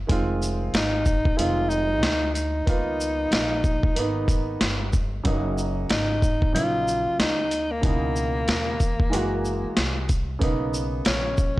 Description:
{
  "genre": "hip hop, jazz-hop",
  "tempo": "93 BPM",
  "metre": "4/4",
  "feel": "swing 60% on 16ths",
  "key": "Db major",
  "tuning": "A4 = 440 Hz",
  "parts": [
    { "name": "upright bass", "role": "bass", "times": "0.0-11.6 s", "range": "F1 to Eb2", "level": "-29 LUFS", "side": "equal", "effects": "none" },
    { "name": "warm upright piano", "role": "accompaniment", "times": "0.1-11.3 s", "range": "Cb3 to Gb4", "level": "-28 LUFS", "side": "right 2 dB", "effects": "none" },
    { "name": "boom bap sampler-style drum kit", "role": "drums", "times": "0.1-11.6 s", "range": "hi-hat, kick drum, shaker, snare drum", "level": "-23 LUFS", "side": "equal", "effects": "none" },
    { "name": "breathy tenor saxophone", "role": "melody", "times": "0.8-11.6 s", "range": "Bb3 to F4", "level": "-26 LUFS", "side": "left 1 dB", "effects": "none" }
  ],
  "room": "small room ambience",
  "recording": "dry, gritty hardware recording, cassette tape",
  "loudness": "-21 LUFS",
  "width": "side -18 dB against mid",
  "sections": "0.0-11.6 A section",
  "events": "none",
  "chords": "0.1 Fm7; 2.7 Db13; 5.3 Gb6; 7.8 Dbm9; 9.1 Gb9; 10.4 Cbmaj9"
}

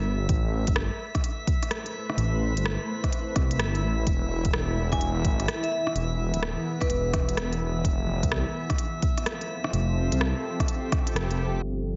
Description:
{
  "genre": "future garage",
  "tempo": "127 BPM",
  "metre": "4/4",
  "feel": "swing 63% on 16ths",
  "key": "unclear",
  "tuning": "A4 = 437 Hz",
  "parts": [
    { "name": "swelling detuned saw bass", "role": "bass", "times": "0.0-12.0 s", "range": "D1 to C2", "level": "-29 LUFS", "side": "equal", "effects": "sidechain pumping" },
    { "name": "drifting glass-harmonics texture", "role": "texture", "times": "0.0-12.0 s", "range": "E5 to B5", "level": "-40 LUFS", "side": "equal", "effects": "chorus, built-in reverb" },
    { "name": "granular cloud pad", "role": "sustained chords", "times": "1.4-12.0 s", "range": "E3 to C5", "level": "-36 LUFS", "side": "equal", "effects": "built-in reverb, sidechain pumping" },
    { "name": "electronic kick drum", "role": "drums", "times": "0.3-11.0 s", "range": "none", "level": "-29 LUFS", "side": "equal", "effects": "none" },
    { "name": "organic electronic drum kit", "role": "drums", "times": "0.3-12.0 s", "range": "hi-hat, rim click", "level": "-35 LUFS", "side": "equal", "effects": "low-pass filter on hats, low-pass filter on snare, low-pass filter on room" },
    { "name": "vibraphone with hard mallets", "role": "melody", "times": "4.9-7.5 s", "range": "B4 to G#5", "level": "-35 LUFS", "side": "equal", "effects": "vintage 12-bit sampler grit, delay" }
  ],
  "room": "light reverb",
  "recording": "heavily compressed radio sound, low-pass filter, nothing above 7.7 kHz",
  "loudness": "-27 LUFS",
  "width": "mono",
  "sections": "0.0-11.6 A section",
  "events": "kick drops out 11.2-11.6; band accent 11.2",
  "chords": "0.3 Am7; 4.1 E; 7.8 Fmaj7"
}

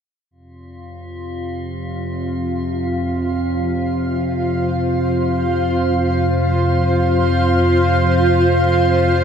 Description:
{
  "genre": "dark ambient drone",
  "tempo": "free time",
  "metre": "none",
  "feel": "none",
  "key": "unclear",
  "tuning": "A4 = 441 Hz",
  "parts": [
    { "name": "granular cloud pad", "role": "sustained chords", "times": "1.6-9.2 s", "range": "F4 to F5", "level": "-19 LUFS", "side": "equal", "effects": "built-in reverb" },
    { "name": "analog drone", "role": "drone", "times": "0.7-9.2 s", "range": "F2 to C3", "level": "-19 LUFS", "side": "equal", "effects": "chorus" },
    { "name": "metallic inharmonic drone", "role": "texture", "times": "0.8-9.2 s", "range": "F4", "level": "-24 LUFS", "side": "right 2 dB", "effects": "chorus, built-in reverb" }
  ],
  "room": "wet cathedral reverb, RT60 6.1 s",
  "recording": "none",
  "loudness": "-15 LUFS",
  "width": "side -7 dB against mid",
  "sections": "0.3-9.2 A section",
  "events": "none",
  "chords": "0.3 F5"
}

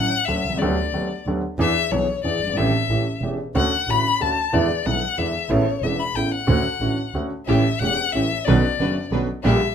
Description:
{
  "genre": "tango",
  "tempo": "183 BPM",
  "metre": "3/4",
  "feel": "rubato",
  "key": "D major",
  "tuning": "A4 = 443 Hz",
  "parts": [
    { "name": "warm violin", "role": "second line", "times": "0.0-9.7 s", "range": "C#5 to B5", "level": "-23 LUFS", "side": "left 7 dB", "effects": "none" },
    { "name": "clear grand piano", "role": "accompaniment", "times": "0.0-9.6 s", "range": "E1 to A4", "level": "-23 LUFS", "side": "right 1 dB", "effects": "none" },
    { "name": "rich double bass", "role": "bass", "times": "0.0-9.6 s", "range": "E1 to E2", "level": "-25 LUFS", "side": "right 2 dB", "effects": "none" },
    { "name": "warm symphonic string section", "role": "stabs", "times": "7.5-9.6 s", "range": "A3 to B4", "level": "-27 LUFS", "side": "right 1 dB", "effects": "none" }
  ],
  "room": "moderate club reverb, RT60 0.5 s",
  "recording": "minimal, uncompressed stereo recording",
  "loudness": "-19 LUFS",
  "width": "side -8 dB against mid",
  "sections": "0.0-9.7 A section",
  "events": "violin solo 0.0-9.7",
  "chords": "0.0 Dmaj7; 0.6 Gmaj7/D; 1.6 E7; 2.6 A7sus4; 2.9 A7; 3.5 Dmaj7; 4.5 E7; 5.5 Aadd9; 6.5 Dmaj7; 7.5 A7; 8.5 Bmadd9"
}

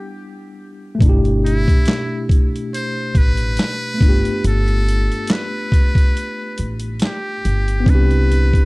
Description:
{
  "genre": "lo-fi hip hop",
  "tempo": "70 BPM",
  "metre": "4/4",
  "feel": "swing 55% on 16ths",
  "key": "G major",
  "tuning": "A4 = 441 Hz",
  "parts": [
    { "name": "trumpet with metal mute", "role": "melody", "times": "0.0-8.7 s", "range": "E4 to C5", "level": "-26 LUFS", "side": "equal", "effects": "tape echo" },
    { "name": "mellow tine electric piano", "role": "accompaniment", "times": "0.0-8.7 s", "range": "B2 to F#5", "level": "-23 LUFS", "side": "left 1 dB", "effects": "medium stereo tremolo" },
    { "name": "upright bass", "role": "bass", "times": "1.0-8.5 s", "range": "G1 to C2", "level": "-18 LUFS", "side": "equal", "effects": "none" },
    { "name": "boom bap sampler-style drum kit", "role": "drums", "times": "1.0-8.7 s", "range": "handclaps, hi-hat, kick drum, snare drum", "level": "-14 LUFS", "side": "equal", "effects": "none" }
  ],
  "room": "little or no reverb",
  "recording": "none",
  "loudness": "-15 LUFS",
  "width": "side -24 dB against mid",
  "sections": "0.0-8.7 A section",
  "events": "none",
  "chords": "0.0 Em9; 1.0 G69; 4.0 G7; 7.9 Cmaj9"
}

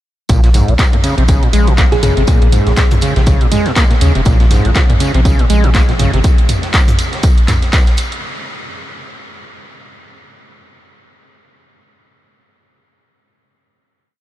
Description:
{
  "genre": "acid house",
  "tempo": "121 BPM",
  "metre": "4/4",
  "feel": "swing 57% on 16ths",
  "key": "Bb minor",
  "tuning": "A4 = 438 Hz",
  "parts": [
    { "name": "overdriven acid bass", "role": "riff", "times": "0.3-6.2 s", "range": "Ab2 to Bb3", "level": "-18 LUFS", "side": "equal", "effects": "distortion, tube saturation, analog chorus, sidechain pumping, ping-pong delay" },
    { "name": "warm sub bass", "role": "bass", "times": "0.3-6.2 s", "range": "F1 to Eb2", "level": "-13 LUFS", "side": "equal", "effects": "sidechain pumping" },
    { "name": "crunchy breakbeat drum kit", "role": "drums", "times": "0.3-8.1 s", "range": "hi-hat, snare drum, tambourine", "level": "-29 LUFS", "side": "equal", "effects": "sidechain pumping on hats, high-pass filter on hats, high-pass filter on snare, sidechain pumping on perc, high-pass filter on perc, high-pass filter on room" },
    { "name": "electronic kick drum", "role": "drums", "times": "0.3-7.8 s", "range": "none", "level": "-12 LUFS", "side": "equal", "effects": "none" },
    { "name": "punchy analog drum machine", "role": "drums", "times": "0.3-8.2 s", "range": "handclaps, hi-hat, toms", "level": "-19 LUFS", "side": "right 1 dB", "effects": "none" },
    { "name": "thumb-piano-like synth pluck", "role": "melody", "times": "1.9-2.1 s", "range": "Ab4", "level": "-23 LUFS", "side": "equal", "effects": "chorus, ping-pong delay" }
  ],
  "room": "light reverb, studio ambience",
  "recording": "none",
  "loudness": "-9 LUFS",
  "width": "side -14 dB against mid",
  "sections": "0.3-8.2 groove",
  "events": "none",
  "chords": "0.3 Bbm7"
}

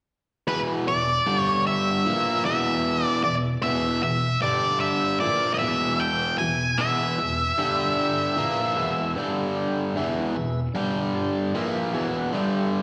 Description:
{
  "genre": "rock",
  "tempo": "76 BPM",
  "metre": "4/4",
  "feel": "straight",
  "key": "unclear",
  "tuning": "A4 = 438 Hz",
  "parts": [
    { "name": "octave-fuzz lead guitar", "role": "melody", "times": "0.5-9.1 s", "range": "B4 to G#5", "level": "-26 LUFS", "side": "equal", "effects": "distortion, slapback echo, tape echo" },
    { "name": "tonewheel organ", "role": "sustained chords", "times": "0.5-12.8 s", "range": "D4 to B5", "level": "-37 LUFS", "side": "equal", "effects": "slow rotary speaker" },
    { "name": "overdriven electric guitar", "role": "riff", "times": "0.5-12.8 s", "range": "E2 to A#3", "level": "-27 LUFS", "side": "equal", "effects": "slapback echo" }
  ],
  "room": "moderate club reverb, RT60 0.8 s",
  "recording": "live gig heard through the venue's PA, recital hall reverb, nothing above 10.7 kHz",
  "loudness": "-24 LUFS",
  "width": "mono",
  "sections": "0.5-12.8 A section",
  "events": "tonewheel organ fill 10.8-12.8",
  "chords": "0.5 E; 1.3 G5; 2.1 E; 4.4 G5; 5.2 E; 7.6 G5; 8.4 E; 9.2 G5; 10.0 E; 10.8 G5; 11.5 E"
}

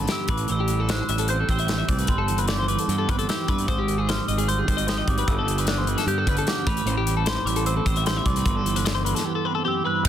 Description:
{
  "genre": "math rock and midwest emo",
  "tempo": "151 BPM",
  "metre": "4/4",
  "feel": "straight",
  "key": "C lydian",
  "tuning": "A4 = 435 Hz",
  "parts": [
    { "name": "glockenspiel with rubber mallets", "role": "melody", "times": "0.0-10.1 s", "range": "B5 to G6", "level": "-29 LUFS", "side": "right 3 dB", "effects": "plate reverb" },
    { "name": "clean electric guitar", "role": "accompaniment", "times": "0.0-10.0 s", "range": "F#2 to G4", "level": "-30 LUFS", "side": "right 8 dB", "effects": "analog chorus, plate reverb" },
    { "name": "twelve-string electric guitar", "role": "arpeggios", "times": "0.0-10.1 s", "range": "G4 to E5", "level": "-28 LUFS", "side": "left 9 dB", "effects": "plate reverb, tape echo" },
    { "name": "fuzz fingered electric bass", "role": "bass", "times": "0.0-10.1 s", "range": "G1 to G2", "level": "-26 LUFS", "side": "equal", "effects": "overdrive" },
    { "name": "modern studio drum kit", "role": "drums", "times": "0.1-10.1 s", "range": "crash cymbal, hi-hat, kick drum, snare drum", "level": "-26 LUFS", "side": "left 1 dB", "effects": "none" }
  ],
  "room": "light reverb",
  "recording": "dense, heavily limited modern master",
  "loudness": "-21 LUFS",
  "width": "side -10 dB against mid",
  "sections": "0.0-10.0 A section",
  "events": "none",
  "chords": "0.3 Am7; 2.1 Cmaj7/G; 3.7 Abmaj7; 5.3 Gmaj7; 6.7 Am7; 8.5 Cmaj7/G"
}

